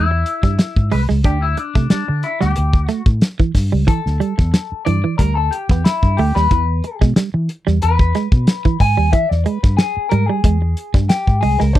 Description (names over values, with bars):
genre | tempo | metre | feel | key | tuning
funk | 91 BPM | 4/4 | straight | unclear | A4 = 439 Hz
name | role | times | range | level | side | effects
electric guitar at the edge of break-up | accompaniment | 0.0-11.8 s | D4 to G#5 | -21 LUFS | left 4 dB | wah, lush chorus
clean electric guitar | riff | 0.0-11.8 s | E3 to D4 | -20 LUFS | right 7 dB | none
vintage muted fingered electric bass | bass | 0.0-11.8 s | C2 to E3 | -17 LUFS | equal | none
cloth-damped thuddy drum kit | drums | 0.3-11.8 s | hi-hat, kick drum, snare drum | -14 LUFS | equal | none
room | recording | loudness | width
little or no reverb | dry, close 1970s-style studio recording | -14 LUFS | side -14 dB against mid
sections
0.0-11.8 A section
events
clean electric guitar solo 0.0-11.8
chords
0.0 E; 1.3 Dsus4; 6.5 E